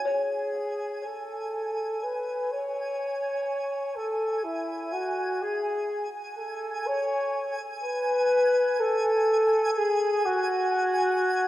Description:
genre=ambient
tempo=62 BPM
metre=4/4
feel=straight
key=unclear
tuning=A4 = 441 Hz
part: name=kalimba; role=arpeggios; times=0.0-0.5 s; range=C#5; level=-32 LUFS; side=left 2 dB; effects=cassette tape, analog delay
part: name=twinkling granular texture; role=texture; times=0.0-11.5 s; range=G#5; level=-32 LUFS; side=right 2 dB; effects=built-in reverb, cassette tape
part: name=mellow flugelhorn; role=melody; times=0.1-11.5 s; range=E4 to C#5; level=-26 LUFS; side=left 1 dB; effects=cassette tape
room=wet spring reverb, RT60 2.7 s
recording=home recording on cassette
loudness=-25 LUFS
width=side -14 dB against mid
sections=0.1-11.5 A section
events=fade-in on synth texture 0.1-11.5; fade-in on flugelhorn 0.1-11.5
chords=0.1 Amaj7; 7.8 N.C.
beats=| 0.06 1.03 1.99 2.96 | 3.93 4.90 5.87 6.83 | 7.80 8.77 9.74 10.70

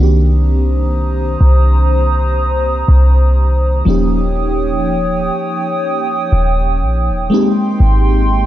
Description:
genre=R&B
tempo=61 BPM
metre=4/4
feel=swing 58% on 16ths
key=C minor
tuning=A4 = 440 Hz
part: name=FM electric piano with soft pad layer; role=accompaniment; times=0.0-8.5 s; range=Eb3 to G4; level=-18 LUFS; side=equal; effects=chorus, tremolo
part: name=hollow soft pad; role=sustained chords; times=0.5-8.5 s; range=Ab3 to Eb6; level=-19 LUFS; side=right 1 dB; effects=chorus
part: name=clean 808-style bass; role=bass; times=0.0-8.5 s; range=Eb1 to C2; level=-12 LUFS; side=equal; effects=none
room=light reverb, digital ambience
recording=dark, warm production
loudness=-11 LUFS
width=side -13 dB against mid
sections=0.0-8.5 A section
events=none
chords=0.0 Cm7; 3.9 Eb7; 7.3 Abmaj7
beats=0.91 1.90 2.88 | 3.86 4.85 5.83 6.82 | 7.80

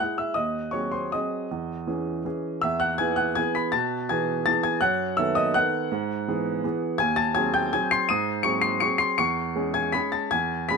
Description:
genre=classical, piano waltz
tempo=163 BPM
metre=3/4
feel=uneven beats, rubato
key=C# minor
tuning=A4 = 441 Hz
part: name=clear upright piano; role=solo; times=0.0-10.8 s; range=D#2 to D#7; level=-22 LUFS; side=equal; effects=none
room=light reverb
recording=nothing above 10.3 kHz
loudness=-22 LUFS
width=side -4 dB against mid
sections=0.0-10.8 A section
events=none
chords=0.4 G#7/D#; 1.5 C#m/E; 2.6 E; 4.8 B7/F#; 5.9 E/G#; 7.0 G#7/D#; 9.2 C#m/E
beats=0.01 | 0.38 0.75 1.14 | 1.51 1.88 2.25 | 2.64 3.00 3.38 | 3.75 4.11 4.48 | 4.83 5.18 5.56 | 5.92 6.27 6.64 | 7.00 7.37 7.74 | 8.10 8.46 8.83 | 9.20 9.56 9.95 | 10.32 10.70

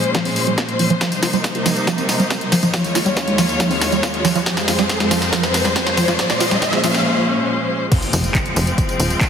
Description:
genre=uplifting trance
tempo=139 BPM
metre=4/4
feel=straight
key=F minor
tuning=A4 = 439 Hz
part: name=rich studio string section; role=sustained chords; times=0.0-9.3 s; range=Eb2 to Db5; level=-20 LUFS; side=left 1 dB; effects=sidechain pumping
part: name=punchy analog drum machine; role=drums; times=0.0-9.3 s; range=crash cymbal, handclaps, hi-hat, snare drum, tambourine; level=-21 LUFS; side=equal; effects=overdrive, high-pass filter on snare, high-pass filter on hats, high-pass filter on perc, high-pass filter on cymbals
part: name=tight sequenced synth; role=arpeggios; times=0.1-6.9 s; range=F3 to F4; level=-20 LUFS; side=right 2 dB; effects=chorus, sidechain pumping, ping-pong delay
part: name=electronic kick drum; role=drums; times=0.1-9.3 s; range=none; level=-20 LUFS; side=equal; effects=overdrive, high-pass filter on kick
part: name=riser and impact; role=sound effects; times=2.5-9.3 s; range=none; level=-25 LUFS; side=equal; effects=none
part: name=tight sequencer bass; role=bass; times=8.1-9.2 s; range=Eb1 to F1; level=-18 LUFS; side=equal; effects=tube saturation, sidechain pumping
room=wet lush hall reverb, RT60 2.2 s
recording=heavily compressed radio sound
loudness=-15 LUFS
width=side -7 dB against mid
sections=0.0-7.9 A section; 7.9-9.3 B section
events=build-up 0.0-7.9; drum fill 0.0-7.1; filter sweep on synth arpeggio sound 0.0-7.9; riser 2.5-7.1; drop 7.9-9.3; impact 7.9-9.3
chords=0.0 Bbm7; 1.0 Cm7; 2.7 Eb7sus4; 4.5 Fm; 6.2 Bbm7; 7.9 Fm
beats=0.15 0.58 | 1.01 1.44 1.87 2.31 | 2.74 3.17 3.60 4.03 | 4.46 4.89 5.33 5.76 | 6.19 6.62 7.05 7.49 | 7.92 8.35 8.78 9.21

